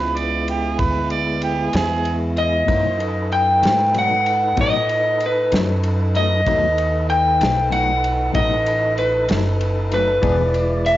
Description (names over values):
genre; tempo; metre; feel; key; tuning
slow blues; 64 BPM (dotted quarters); 12/8; straight; unclear; A4 = 445 Hz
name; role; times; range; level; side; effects
mellow harmonica; second line; 0.0-2.2 s; G4 to D5; -23 LUFS; right 6 dB; overdrive, cassette tape
tonewheel organ; sustained chords; 0.0-11.0 s; G#3 to D5; -26 LUFS; equal; slow rotary speaker, cassette tape
upright bass; bass; 0.0-11.0 s; E1 to A2; -23 LUFS; equal; none
warm soul drum kit; drums; 0.2-11.0 s; kick drum, ride cymbal, snare drum; -27 LUFS; equal; cassette tape
electric guitar through a small old amp; melody; 2.4-11.0 s; B4 to G5; -18 LUFS; left 1 dB; none
clean electric guitar; accompaniment; 2.7-10.4 s; B2 to G#4; -27 LUFS; left 7 dB; harmonic tremolo, cassette tape
room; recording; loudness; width
light reverb, studio reverb; home recording on cassette, nothing above 7.6 kHz; -16 LUFS; side -14 dB against mid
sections
0.0-11.0 A section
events
none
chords
0.0 E7; 2.7 B7; 10.2 E7